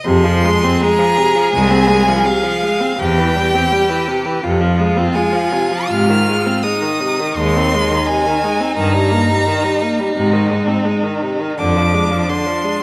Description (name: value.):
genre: classical, slow romantic movement for string quartet.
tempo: 83 BPM.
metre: 4/4.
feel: uneven beats, rubato.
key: F minor.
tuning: A4 = 440 Hz.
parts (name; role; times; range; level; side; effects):
rich violin; melody; 0.0-12.8 s; F5 to F6; -22 LUFS; equal; none.
rich violin; second line; 0.0-12.8 s; D4 to Ab4; -22 LUFS; equal; none.
warm viola; accompaniment; 0.1-12.8 s; C3 to C4; -21 LUFS; equal; none.
rich cello; bass; 0.1-12.2 s; C2 to Ab2; -21 LUFS; equal; none.
room: wet scoring stage reverb, RT60 1.5 s.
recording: none.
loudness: -16 LUFS.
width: mono.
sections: 0.0-12.8 A section.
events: none.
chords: 0.0 Fm; 3.0 C/E; 4.4 Fm; 5.9 Ab; 8.8 Eb/G; 10.2 Ab; 11.6 Ddim/F.